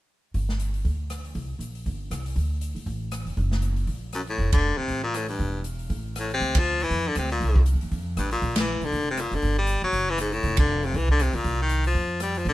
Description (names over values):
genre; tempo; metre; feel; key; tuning
jazz, small-group swing and bop; 238 BPM; 4/4; swing 58% on 8ths; F major; A4 = 442 Hz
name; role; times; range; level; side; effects
upright bass; bass; 0.3-12.5 s; E1 to A2; -26 LUFS; equal; none
swinging big-band drum kit; drums; 0.3-12.5 s; hi-hat, kick drum, ride cymbal, rim click, snare drum; -29 LUFS; equal; none
edgy baritone saxophone; melody; 4.2-12.5 s; Gb2 to G3; -25 LUFS; left 2 dB; none
room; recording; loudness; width
light reverb; minimal, uncompressed stereo recording; -23 LUFS; side -16 dB against mid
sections
0.3-4.4 A section; 4.4-12.5 B section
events
band accent 4.5, 6.5, 8.5, 10.6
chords
0.3 G5; 1.4 C5; 2.4 D5; 3.4 Gb; 4.4 F; 5.4 Em; 5.9 N.C.; 6.4 Dm; 7.4 Cm7; 7.9 F; 8.4 Bb; 9.4 G5; 9.9 Gbmadd9; 10.4 F5; 11.4 Cm; 11.9 Fsus2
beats
| 0.34 0.60 0.85 1.10 | 1.35 1.61 1.86 2.11 | 2.37 2.62 2.87 3.12 | 3.38 3.63 3.88 4.13 | 4.38 4.64 4.89 5.14 | 5.39 5.65 5.90 6.15 | 6.40 6.66 6.91 7.16 | 7.41 7.66 7.92 8.17 | 8.42 8.67 8.92 9.18 | 9.43 9.68 9.93 10.18 | 10.44 10.69 10.94 11.19 | 11.44 11.70 11.95 12.20 | 12.45